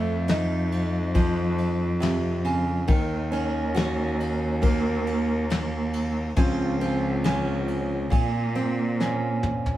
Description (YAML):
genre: acoustic folk-pop ballad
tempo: 69 BPM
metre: 4/4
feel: straight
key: unclear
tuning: A4 = 440 Hz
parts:
  - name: fingerpicked steel-string acoustic guitar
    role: accompaniment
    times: 0.0-9.8 s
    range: F2 to Gb4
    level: -26 LUFS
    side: right 2 dB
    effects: none
  - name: rich cello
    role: bass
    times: 0.0-9.8 s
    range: Db2 to Bb2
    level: -27 LUFS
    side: equal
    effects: none
  - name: soft brush drum kit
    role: drums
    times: 0.3-9.8 s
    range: kick drum, ride cymbal, snare drum, toms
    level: -28 LUFS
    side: left 1 dB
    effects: none
room: moderate studio reverb, RT60 0.6 s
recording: heard from further back in the room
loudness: -22 LUFS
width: side -14 dB against mid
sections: 0.0-9.8 A section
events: drum fill 9.0-9.8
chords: 0.0 F7; 2.9 Ebm7; 6.4 Dbmaj7; 8.1 Bbmadd9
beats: 0.29 1.16 2.02 | 2.89 3.76 4.63 5.50 | 6.37 7.24 8.11 8.99